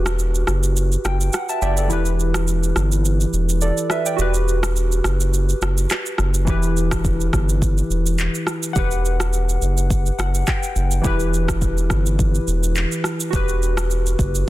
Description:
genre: afrobeats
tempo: 105 BPM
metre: 4/4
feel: swing 55% on 16ths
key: E minor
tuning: A4 = 440 Hz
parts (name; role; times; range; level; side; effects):
- warm analog keys; accompaniment; 0.0-14.5 s; E3 to A5; -24 LUFS; equal; chorus
- round analog bass; bass; 0.0-14.4 s; E1 to G1; -19 LUFS; equal; none
- afro-pop drum kit; drums; 0.1-14.5 s; handclaps, kick drum, rim click, shaker; -23 LUFS; equal; soft clipping on snare
room: digital ambience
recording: dense, heavily limited modern master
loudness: -17 LUFS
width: side -16 dB against mid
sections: 0.0-14.5 A section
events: break 0.0-6.5; synth keys fill 0.8-1.9, 9.9-11.0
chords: 0.0 Gmaj7/E; 1.9 Em; 4.2 Gmaj7/E; 6.5 Em; 8.8 Gmaj7/E; 11.0 Em; 13.3 Gmaj7/E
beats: 0.19 0.76 1.33 | 1.90 2.48 3.05 3.62 | 4.19 4.76 5.33 5.90 | 6.47 7.05 7.62 8.19 | 8.76 9.33 9.90 10.47 | 11.05 11.62 12.19 12.76 | 13.33 13.90 14.47

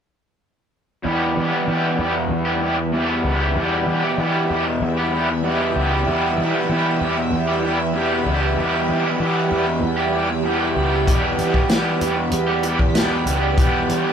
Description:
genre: psychedelic rock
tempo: 96 BPM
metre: 4/4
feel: straight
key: E minor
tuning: A4 = 439 Hz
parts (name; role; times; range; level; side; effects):
- raw garage guitar; riff; 1.0-14.1 s; E2 to G4; -20 LUFS; equal; overdrive, harmonic tremolo
- fuzz fingered electric bass; bass; 1.0-14.0 s; C#2 to E3; -24 LUFS; equal; overdrive
- string machine, full ensemble; sustained chords; 1.1-14.1 s; G4 to B5; -25 LUFS; right 5 dB; ensemble chorus
- vintage drum kit; drums; 11.1-14.0 s; hi-hat, kick drum, snare drum; -20 LUFS; left 1 dB; none
room: moderate large studio reverb, RT60 0.9 s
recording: band playing live in one room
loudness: -17 LUFS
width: side -8 dB against mid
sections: 1.1-14.1 A section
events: none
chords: 1.1 Em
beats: | 1.05 1.68 2.31 2.94 | 3.56 4.19 4.82 5.44 | 6.07 6.69 7.32 7.95 | 8.57 9.20 9.82 10.45 | 11.07 11.70 12.33 12.95 | 13.58

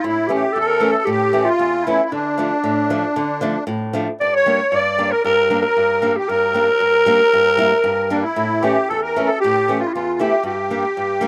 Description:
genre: klezmer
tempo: 115 BPM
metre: 4/4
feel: straight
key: G dorian sharp4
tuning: A4 = 440 Hz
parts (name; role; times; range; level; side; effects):
- growling clarinet; melody; 0.0-11.3 s; D4 to D5; -20 LUFS; equal; none
- musette accordion; second line; 0.0-11.3 s; D4 to D5; -24 LUFS; equal; slapback echo
- flamenco guitar; accompaniment; 0.0-11.3 s; E2 to E4; -25 LUFS; equal; none
room: little or no reverb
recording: recorded outdoors, with no room sound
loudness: -18 LUFS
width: mono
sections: 0.0-11.3 A section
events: none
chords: 0.0 A; 2.1 Dm; 4.2 Gm; 8.4 A; 10.4 Gm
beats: | 0.04 0.56 1.08 1.60 | 2.12 2.64 3.16 3.68 | 4.20 4.72 5.25 5.76 | 6.29 6.80 7.33 7.84 | 8.36 8.88 9.40 9.92 | 10.44 10.96

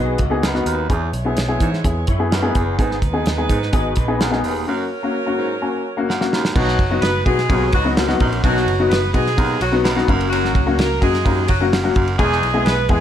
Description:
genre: uptempo 1960s-style soul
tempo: 128 BPM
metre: 4/4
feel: straight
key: B major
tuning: A4 = 439 Hz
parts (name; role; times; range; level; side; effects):
- warm saxophone section; second line; 0.0-13.0 s; F#3 to D#5; -23 LUFS; right 2 dB; none
- dark upright piano; accompaniment; 0.0-13.0 s; F#3 to A#5; -21 LUFS; left 4 dB; none
- electric guitar through a small old amp; riff; 0.0-4.6, 7.5-10.8 s; A#3 to D#5; -26 LUFS; left 4 dB; ensemble chorus
- vintage muted picked electric bass; bass; 0.0-13.0 s; E1 to E3; -22 LUFS; right 1 dB; none
- cloth-damped thuddy drum kit; drums; 0.2-13.0 s; crash cymbal, hi-hat, kick drum, ride cymbal, snare drum; -20 LUFS; right 1 dB; none
- raspy baritone saxophone; riff; 0.4-12.5 s; D#2 to B2; -25 LUFS; right 4 dB; none
room: light reverb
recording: none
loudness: -16 LUFS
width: side -10 dB against mid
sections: 0.0-6.6 A section; 6.6-13.0 B section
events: break 4.7-6.6; upright piano fill 5.1-6.6; drum fill 6.1-6.6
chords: 0.0 B; 0.9 E; 2.8 G#m; 4.7 F#; 6.6 B; 10.1 F#; 12.2 E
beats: 0.43 | 0.90 1.37 1.84 2.31 | 2.79 3.26 3.73 4.20 | 4.67 5.14 5.61 6.08 | 6.55 7.03 7.50 7.96 | 8.44 8.90 9.38 9.84 | 10.31 10.78 11.25 11.72 | 12.19 12.66

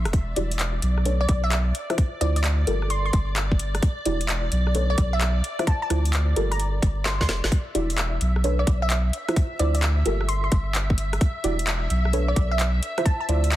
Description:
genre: UK garage, two-step garage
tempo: 130 BPM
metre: 4/4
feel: swing 66% on 16ths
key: E minor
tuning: A4 = 440 Hz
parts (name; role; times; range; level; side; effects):
- soft string machine; sustained chords; 0.0-13.6 s; D5 to E5; -35 LUFS; equal; ensemble chorus, sidechain pumping
- soft dub sub bass; bass; 0.0-13.6 s; E1 to D2; -23 LUFS; equal; none
- electronic kick drum; drums; 0.1-13.2 s; none; -21 LUFS; equal; small room ambience
- garage drum kit; drums; 0.1-13.6 s; handclaps, hi-hat, rim click, snare drum; -28 LUFS; left 1 dB; small room ambience
- deep mellow chord stab; stabs; 0.4-13.6 s; D4 to E5; -29 LUFS; right 1 dB; chorus, ping-pong delay
- glassy wavetable pluck; melody; 1.2-13.3 s; D5 to C6; -30 LUFS; equal; chorus, ping-pong delay
room: digital ambience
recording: dense, heavily limited modern master, vinyl crackle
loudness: -21 LUFS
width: side -14 dB against mid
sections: 0.0-13.6 A section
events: filter sweep on synth stab 0.0-13.6; drum fill 7.1-7.5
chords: 0.1 Em9; 1.1 Bm9; 1.7 Dm9; 2.7 Gm9; 3.8 Em9; 4.7 Bm9; 5.4 Dm9; 6.4 Gm9; 7.5 Em9; 8.4 Bm9; 9.1 Dm9; 10.1 Gm9; 11.2 Em9; 12.1 Bm9; 12.8 Dm9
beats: | 0.13 0.59 1.06 1.52 | 1.98 2.44 2.90 3.36 | 3.83 4.29 4.75 5.21 | 5.67 6.13 6.59 7.06 | 7.52 7.98 8.44 8.90 | 9.36 9.82 10.29 10.75 | 11.21 11.67 12.13 12.59 | 13.06 13.52

